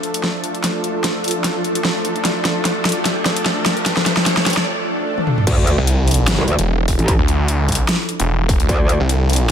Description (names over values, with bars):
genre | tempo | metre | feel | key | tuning
heavy wobble dubstep | 149 BPM | 4/4 | swing 54% on 16ths, half-time | D minor | A4 = 442 Hz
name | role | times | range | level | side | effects
supersaw pad | sustained chords | 0.0-9.5 s | F3 to A4 | -24 LUFS | equal | sidechain pumping, low-pass filter
dubstep drum kit | drums | 0.0-9.4 s | crash cymbal, hi-hat, snare drum, toms | -19 LUFS | left 1 dB | studio reverb
riser, swell and sub drop | sound effects | 1.3-7.1 s | none | -26 LUFS | right 1 dB | none
granular cloud pad | texture | 0.2-4.7 s | F4 to A5 | -26 LUFS | right 1 dB | built-in reverb, sidechain pumping
metallic wobble bass | bass | 5.5-9.0 s | A1 to D2 | -16 LUFS | equal | chorus, overdrive
electronic kick drum | drums | 5.5-8.8 s | none | -18 LUFS | equal | distortion, studio reverb
snarling distorted saw bass | bass | 5.8-9.5 s | E1 to D2 | -16 LUFS | equal | distortion, overdrive
room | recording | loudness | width
light reverb | none | -15 LUFS | side -8 dB against mid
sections
0.0-5.5 A section; 5.5-9.5 B section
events
build-up 0.0-5.5; drum fill 0.0-4.7, 5.2-5.5; riser 1.3-4.7; break 4.7-5.5; swell 4.7-5.5; drop 5.5-9.5; impact 5.5-7.1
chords
0.0 Dm; 5.5 Dmadd9